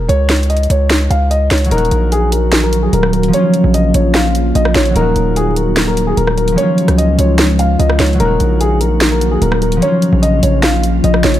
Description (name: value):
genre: hip hop, trap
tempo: 148 BPM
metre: 4/4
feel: half-time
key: Eb minor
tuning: A4 = 439 Hz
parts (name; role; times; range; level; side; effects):
- dark concert grand piano; melody; 0.0-11.4 s; Ab4 to F5; -17 LUFS; left 2 dB; low-pass filter
- distorted 808-style bass; bass; 0.0-11.4 s; Eb1 to Db2; -14 LUFS; equal; distortion
- trap drum kit; drums; 0.1-11.4 s; finger snaps, hi-hat, rim click, snare drum; -17 LUFS; equal; none
- concert harp; accompaniment; 1.7-11.4 s; F3 to Gb4; -18 LUFS; equal; low-pass filter
- glassy FM pad; sustained chords; 2.0-11.4 s; Db3 to Gb4; -19 LUFS; equal; ensemble chorus, built-in reverb
room: studio ambience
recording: vinyl crackle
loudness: -10 LUFS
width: side -12 dB against mid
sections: 0.0-1.7 A section; 1.7-11.4 B section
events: none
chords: 0.1 N.C.; 1.7 Ebm; 3.3 Bbm; 5.0 Ebm; 6.6 Db; 8.2 Ebm; 9.8 Bbm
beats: | 0.09 0.50 0.90 1.31 | 1.71 2.12 2.52 2.93 | 3.33 3.74 4.14 4.55 | 4.96 5.36 5.77 6.17 | 6.58 6.98 7.39 7.79 | 8.20 8.61 9.01 9.41 | 9.82 10.23 10.63 11.04